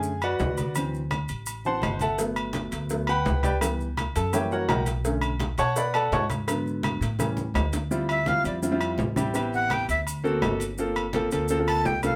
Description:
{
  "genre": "Afro-Cuban jazz",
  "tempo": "168 BPM",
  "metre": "4/4",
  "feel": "straight",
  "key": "D minor from 7.9 s",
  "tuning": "A4 = 439 Hz",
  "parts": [
    { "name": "warm concert grand piano", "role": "accompaniment", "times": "0.0-12.2 s", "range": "D3 to C#6", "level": "-29 LUFS", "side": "equal", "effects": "none" },
    { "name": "upright bass", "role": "bass", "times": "0.0-12.2 s", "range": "G1 to B2", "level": "-33 LUFS", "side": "equal", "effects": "none" },
    { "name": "congas", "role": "percussion", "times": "0.0-12.2 s", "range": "none", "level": "-36 LUFS", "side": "equal", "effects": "none" },
    { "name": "maracas", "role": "percussion", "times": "0.0-12.2 s", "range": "none", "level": "-42 LUFS", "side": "equal", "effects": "none" },
    { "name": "agogo bells and timbales", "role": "percussion", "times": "0.2-12.2 s", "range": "none", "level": "-34 LUFS", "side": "equal", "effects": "none" },
    { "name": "cowbell", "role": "percussion", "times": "2.2-7.9 s", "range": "none", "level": "-37 LUFS", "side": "equal", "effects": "none" },
    { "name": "breathy bright jazz flute", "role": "melody", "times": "8.1-12.2 s", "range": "D5 to A5", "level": "-27 LUFS", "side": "equal", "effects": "none" }
  ],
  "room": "moderate studio reverb, RT60 0.5 s",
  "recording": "none",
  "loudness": "-26 LUFS",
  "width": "mono",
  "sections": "0.0-7.9 A section; 7.9-12.2 A section",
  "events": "grand piano solo 0.0-7.9; drum fill 7.2-7.9; flute solo 7.9-12.2",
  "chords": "0.0 Bm7; 0.8 D9; 2.2 Gmaj9; 3.6 C#m7b5; 4.3 F#7b9; 5.1 Bm9; 6.5 G#m7b5; 7.2 A7; 7.9 Dm11; 9.4 Am7; 10.1 D7b13; 10.8 Gm11",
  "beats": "0.04 0.40 | 0.76 1.11 1.47 1.83 | 2.19 2.55 2.90 3.26 | 3.62 3.98 4.34 4.70 | 5.05 5.41 5.77 6.13 | 6.49 6.84 7.20 7.56 | 7.92 8.28 8.63 8.99 | 9.35 9.71 10.07 10.43 | 10.79 11.14 11.50 11.86"
}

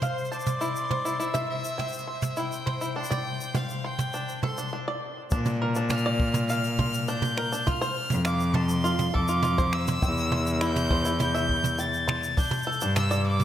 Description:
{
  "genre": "folktronica",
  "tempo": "102 BPM",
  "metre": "4/4",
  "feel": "straight",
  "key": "F major",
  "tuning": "A4 = 439 Hz",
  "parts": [
    { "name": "bright violin", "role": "melody", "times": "0.0-13.4 s", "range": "C5 to A6", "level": "-31 LUFS", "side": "left 1 dB", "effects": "analog delay" },
    { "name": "bluegrass banjo", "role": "arpeggios", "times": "0.0-13.2 s", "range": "D4 to C6", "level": "-32 LUFS", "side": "equal", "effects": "analog delay" },
    { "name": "jazz brush drum kit", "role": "drums", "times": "0.0-13.4 s", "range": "finger snaps, shaker, toms", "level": "-31 LUFS", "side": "right 1 dB", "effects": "none" },
    { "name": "backwards swelling texture", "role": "texture", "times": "0.0-4.7 s", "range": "C5 to C6", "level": "-42 LUFS", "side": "equal", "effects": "built-in reverb" },
    { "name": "rich cello", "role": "bass", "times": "5.3-13.4 s", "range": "E2 to Bb2", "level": "-27 LUFS", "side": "left 1 dB", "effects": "tube saturation" },
    { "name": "kick drum", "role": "drums", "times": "5.3-12.5 s", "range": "none", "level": "-28 LUFS", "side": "equal", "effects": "none" }
  ],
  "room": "moderate plate reverb, RT60 2.3 s",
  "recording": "dreamy mix soaked in reverb",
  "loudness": "-24 LUFS",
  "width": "side -11 dB against mid",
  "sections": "0.0-5.3 A section; 5.3-13.4 B section",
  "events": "break 4.7-5.3",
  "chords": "0.0 F; 0.6 C/E; 3.0 G5; 5.3 Bb; 7.7 F5; 10.0 C/E; 12.4 Gsus2",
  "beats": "0.02 | 0.61 1.20 1.79 2.38 | 2.96 3.55 4.14 4.73 | 5.32 5.91 6.49 7.08 | 7.67 8.26 8.85 9.44 | 10.02 10.61 11.20 11.79 | 12.38 12.96"
}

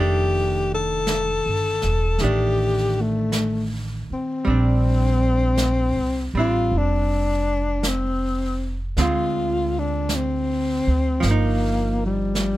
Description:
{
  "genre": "jazz ballad",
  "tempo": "53 BPM",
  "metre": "4/4",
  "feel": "swing 68% on 8ths",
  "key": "Bb major",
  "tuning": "A4 = 441 Hz",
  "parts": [
    { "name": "breathy tenor saxophone", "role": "melody", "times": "0.0-12.6 s", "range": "G3 to A4", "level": "-23 LUFS", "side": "left 3 dB", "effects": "none" },
    { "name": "archtop guitar, miked and amplified", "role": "accompaniment", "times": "0.0-12.6 s", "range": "D3 to F4", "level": "-28 LUFS", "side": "right 5 dB", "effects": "none" },
    { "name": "upright bass", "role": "bass", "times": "0.0-12.6 s", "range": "E1 to D2", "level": "-23 LUFS", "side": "right 1 dB", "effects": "none" },
    { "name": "jazz brush drum kit", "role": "drums", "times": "1.1-12.6 s", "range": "brushed snare drum, hi-hat, snare drum", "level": "-31 LUFS", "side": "right 2 dB", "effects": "none" }
  ],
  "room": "little or no reverb",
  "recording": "close, detailed microphones",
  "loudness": "-19 LUFS",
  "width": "side -15 dB against mid",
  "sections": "0.0-12.6 A section",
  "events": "none",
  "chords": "0.0 F13; 4.5 Bb69; 9.0 Dm7b5; 11.2 Ebadd9/G",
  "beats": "1.08 2.20 3.33 | 4.46 5.58 6.71 7.84 | 8.96 10.09 11.22 12.36"
}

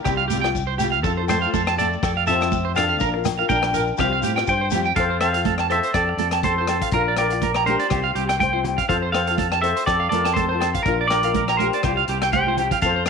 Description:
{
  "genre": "highlife guitar band",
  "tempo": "122 BPM",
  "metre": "4/4",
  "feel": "swing 55% on 16ths",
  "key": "F major",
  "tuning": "A4 = 440 Hz",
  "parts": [
    { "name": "clean electric guitar", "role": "melody", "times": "0.0-13.1 s", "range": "Bb4 to G5", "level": "-23 LUFS", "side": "equal", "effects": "slapback echo" },
    { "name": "steel pan", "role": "second line", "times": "0.0-13.1 s", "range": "A3 to C5", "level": "-30 LUFS", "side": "left 12 dB", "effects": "none" },
    { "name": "electric guitar at the edge of break-up", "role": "arpeggios", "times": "0.0-13.1 s", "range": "G4 to Bb5", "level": "-24 LUFS", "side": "right 11 dB", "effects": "slapback echo" },
    { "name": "nylon-string guitar", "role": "accompaniment", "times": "0.1-13.1 s", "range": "G3 to Bb4", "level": "-29 LUFS", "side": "left 13 dB", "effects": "none" },
    { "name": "fingered electric bass", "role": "bass", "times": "0.1-13.1 s", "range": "Bb1 to A2", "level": "-27 LUFS", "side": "equal", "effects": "none" },
    { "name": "vintage drum kit", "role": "drums", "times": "0.1-13.1 s", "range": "hi-hat, kick drum, rim click", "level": "-29 LUFS", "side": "left 4 dB", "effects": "none" },
    { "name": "agogo bells", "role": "percussion", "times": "0.1-13.1 s", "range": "none", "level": "-30 LUFS", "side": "left 13 dB", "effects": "none" },
    { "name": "congas", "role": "percussion", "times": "0.1-12.9 s", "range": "none", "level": "-29 LUFS", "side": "right 14 dB", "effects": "none" },
    { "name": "shekere", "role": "percussion", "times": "0.1-4.9, 12.8-13.1 s", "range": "none", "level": "-34 LUFS", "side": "left 7 dB", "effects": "none" }
  ],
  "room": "moderate plate reverb, RT60 1.0 s, small room ambience",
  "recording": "1960s-style stereo with parts hard left and right",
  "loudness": "-18 LUFS",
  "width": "side -5 dB against mid",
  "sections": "0.0-5.0 A section; 5.0-13.1 B section",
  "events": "drum fill 12.5-12.8",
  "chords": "0.1 Csus4; 1.0 F; 3.0 Bb; 4.0 Csus4; 5.0 F; 6.9 Bb; 7.9 Csus4; 8.9 F; 10.9 Bb; 11.8 Csus4",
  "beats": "0.06 0.55 | 1.04 1.53 2.02 2.52 | 3.01 3.50 3.99 4.48 | 4.97 5.46 5.95 6.44 | 6.93 7.42 7.91 8.40 | 8.90 9.39 9.88 10.37 | 10.86 11.35 11.85 12.34 | 12.83"
}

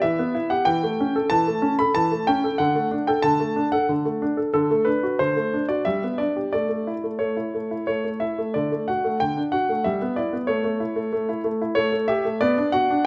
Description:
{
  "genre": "classical-period piano sonatina",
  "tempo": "93 BPM",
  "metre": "3/4",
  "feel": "straight",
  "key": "D major",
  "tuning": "A4 = 441 Hz",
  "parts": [
    { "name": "clear concert grand piano", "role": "solo", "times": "0.0-13.1 s", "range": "D3 to B5", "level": "-23 LUFS", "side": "equal", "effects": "none" }
  ],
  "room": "moderate recital hall reverb, RT60 1.6 s",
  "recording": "none",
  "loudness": "-23 LUFS",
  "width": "mono",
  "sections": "0.0-8.6 A section; 8.6-13.1 B section",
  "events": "none",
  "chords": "0.0 Em; 0.7 A7/E; 2.6 D5; 4.5 D; 5.9 G; 6.5 A; 8.6 D; 9.8 Em/G; 10.5 A; 11.8 A7; 12.4 Bm",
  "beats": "0.02 | 0.66 1.30 1.95 | 2.59 3.24 3.89 | 4.54 5.19 5.85 | 6.53 7.21 7.88 | 8.55 9.20 9.85 | 10.49 11.13 11.77 | 12.41 13.05"
}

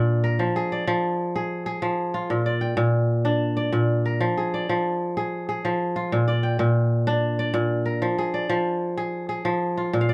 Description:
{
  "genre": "west african traditional",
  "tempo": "126 BPM (dotted quarters)",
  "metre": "12/8",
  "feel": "straight",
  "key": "F dorian",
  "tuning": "A4 = 442 Hz",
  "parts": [
    { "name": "kora", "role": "solo", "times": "0.0-10.1 s", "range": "Bb2 to G5", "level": "-24 LUFS", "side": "equal", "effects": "none" }
  ],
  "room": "moderate small room reverb, RT60 0.5 s",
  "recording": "none",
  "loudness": "-24 LUFS",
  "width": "mono",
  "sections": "0.0-10.1 A section",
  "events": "none",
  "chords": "0.4 Fm; 2.3 Bb; 4.2 Fm; 6.1 Bb; 8.0 Fm",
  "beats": "| 0.38 0.86 1.34 1.81 | 2.29 2.77 3.25 3.72 | 4.20 4.67 5.15 5.63 | 6.11 6.58 7.06 7.54 | 8.01 8.49 8.97 9.45 | 9.92"
}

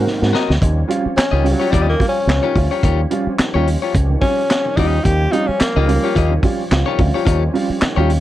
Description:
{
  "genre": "funk",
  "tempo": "108 BPM",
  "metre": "4/4",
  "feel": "swing 56% on 16ths",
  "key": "Eb mixolydian",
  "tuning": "A4 = 440 Hz",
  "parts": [
    { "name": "overdriven tonewheel organ", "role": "sustained chords", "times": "0.0-8.2 s", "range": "F3 to Db4", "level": "-28 LUFS", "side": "left 2 dB", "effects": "chorus vibrato, lush chorus" },
    { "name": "dark upright piano", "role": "stabs", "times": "0.0-8.2 s", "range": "Ab2 to Gb4", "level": "-22 LUFS", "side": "right 4 dB", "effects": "slapback echo" },
    { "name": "fingered electric bass with an envelope filter", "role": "bass", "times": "0.0-8.2 s", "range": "Db2 to Ab2", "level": "-17 LUFS", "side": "equal", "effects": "none" },
    { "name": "vintage drum kit", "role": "drums", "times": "0.1-8.2 s", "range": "handclaps, hi-hat, kick drum, snare drum", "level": "-19 LUFS", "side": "equal", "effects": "none" },
    { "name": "electric guitar at the edge of break-up", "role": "accompaniment", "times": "0.3-8.1 s", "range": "F4 to Eb5", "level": "-21 LUFS", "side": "left 8 dB", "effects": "none" },
    { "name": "breathy tenor saxophone", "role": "melody", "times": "1.2-6.4 s", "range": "Gb3 to G4", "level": "-19 LUFS", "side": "left 1 dB", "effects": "none" }
  ],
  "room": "small room ambience",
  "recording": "dry, close 1970s-style studio recording",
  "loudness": "-14 LUFS",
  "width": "side -14 dB against mid",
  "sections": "0.6-8.2 A section",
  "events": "drum fill 0.1-0.6; tenor saxophone solo 0.6-8.2",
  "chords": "0.0 Ab9; 0.6 Eb9",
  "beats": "0.06 | 0.62 1.17 1.73 2.28 | 2.83 3.39 3.94 4.50 | 5.05 5.61 6.16 6.71 | 7.26 7.82"
}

